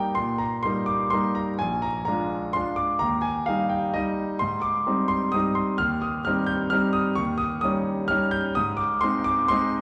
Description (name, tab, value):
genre	classical, piano waltz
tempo	128 BPM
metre	3/4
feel	rubato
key	Eb major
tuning	A4 = 440 Hz
part	bright grand piano	solo	0.0-9.8 s	Bb1 to G6	-25 LUFS	equal	none
room	wet recital hall reverb, RT60 1.5 s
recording	heard from further back in the room, vinyl crackle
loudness	-25 LUFS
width	mono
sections	0.0-9.8 A section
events	none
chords	0.0 Eb; 1.6 Bb7; 3.0 Eb; 4.4 Abmaj7; 7.2 Eb7; 8.6 Ab